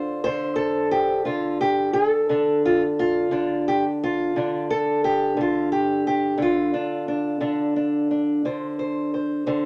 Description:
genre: acoustic country blues, solo or duo.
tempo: 59 BPM (dotted quarters).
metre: 12/8.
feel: straight.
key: D minor.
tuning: A4 = 441 Hz.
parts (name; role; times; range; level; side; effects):
fingerpicked old ladder-braced acoustic guitar; solo; 0.0-9.7 s; D3 to C5; -23 LUFS; equal; none.
room: moderate studio reverb, RT60 0.6 s.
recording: none.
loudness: -23 LUFS.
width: mono.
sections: 0.0-9.7 A section.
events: none.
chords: 0.0 Dm7.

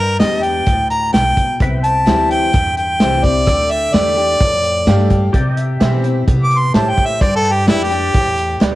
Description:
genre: honky-tonk and classic country.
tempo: 128 BPM.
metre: 4/4.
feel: straight.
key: C major.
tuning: A4 = 440 Hz.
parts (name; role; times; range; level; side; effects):
clear harmonica; melody; 0.0-8.7 s; E4 to D6; -16 LUFS; equal; none.
picked steel-string acoustic guitar; accompaniment; 0.0-8.8 s; G2 to G4; -23 LUFS; left 6 dB; cassette tape.
pedal steel guitar; sustained chords; 0.0-8.8 s; G4 to G5; -29 LUFS; equal; lush chorus, cassette tape.
upright bass; bass; 0.0-8.8 s; B1 to C3; -19 LUFS; equal; none.
vintage drum kit; drums; 0.2-8.7 s; hi-hat, kick drum, snare drum; -17 LUFS; equal; none.
bright upright piano; accompaniment; 2.1-8.8 s; G4 to F5; -25 LUFS; right 8 dB; cassette tape.
room: studio ambience.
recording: home recording on cassette.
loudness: -12 LUFS.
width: side -16 dB against mid.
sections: 0.0-8.8 A section.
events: harmonica solo 0.0-8.8.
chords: 0.0 G; 1.6 C; 3.5 Dsus4; 5.3 C; 7.2 G.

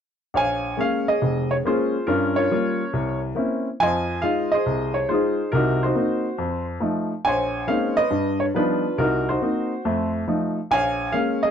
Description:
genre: solo jazz.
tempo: 139 BPM.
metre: 4/4.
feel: swing 67% on 8ths.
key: Bb minor.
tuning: A4 = 439 Hz.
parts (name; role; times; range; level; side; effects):
clear upright piano; solo; 0.3-11.5 s; F1 to Ab5; -20 LUFS; equal; none.
room: little or no reverb.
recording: dry, close 1970s-style studio recording.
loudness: -20 LUFS.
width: side -8 dB against mid.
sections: 0.3-11.5 A section.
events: none.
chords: 0.3 Bbm7; 2.1 Gm7b5; 2.9 C7b9; 3.8 Fm7; 5.5 Cm7b5; 6.4 F7; 7.2 Bbm11; 8.1 G7b13; 9.0 Cm7b5; 9.8 F7; 10.7 Bbm7.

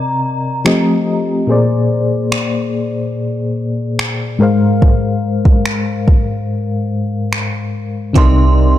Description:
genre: contemporary R&B.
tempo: 72 BPM.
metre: 4/4.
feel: straight.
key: unclear.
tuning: A4 = 440 Hz.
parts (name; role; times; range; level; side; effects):
synth chime; melody; 0.0-1.0, 8.2-8.8 s; Bb5 to C6; -22 LUFS; right 1 dB; ensemble chorus, low-pass filter, ping-pong delay.
FM electric piano with tremolo; accompaniment; 0.0-8.8 s; Ab2 to F5; -15 LUFS; left 2 dB; low-pass filter.
smooth R&B drum kit; drums; 0.7-8.3 s; finger snaps, hi-hat, kick drum; -14 LUFS; right 1 dB; none.
direct-recorded clean electric guitar; arpeggios; 8.2-8.8 s; C3; -20 LUFS; right 10 dB; warbly pitch drift.
warm 808-style bass; bass; 8.2-8.8 s; C2; -11 LUFS; right 1 dB; none.
room: light reverb.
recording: dark, warm production.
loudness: -13 LUFS.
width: side -12 dB against mid.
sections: 0.0-8.2 A section.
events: filter sweep 0.0-8.2.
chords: 0.0 Cm7; 0.7 F7; 1.5 Bb9; 4.4 Ab6; 8.2 Cm9.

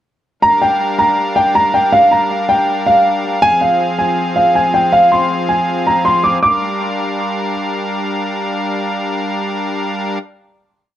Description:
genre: hip hop.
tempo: 160 BPM.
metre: 4/4.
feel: half-time.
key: G phrygian.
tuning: A4 = 440 Hz.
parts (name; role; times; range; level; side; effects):
dark concert grand piano; melody; 0.4-7.5 s; F5 to D6; -12 LUFS; equal; dub echo.
pipe organ, strings celeste; sustained chords; 0.4-10.2 s; F3 to F5; -19 LUFS; left 1 dB; none.
room: moderate spring reverb, RT60 1.2 s, small room ambience.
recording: echo-heavy mix.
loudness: -12 LUFS.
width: side -11 dB against mid.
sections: 0.4-6.4 hook; 6.4-9.4 final chord.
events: none.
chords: 0.4 Gm7; 3.4 Fm; 6.4 Gm7.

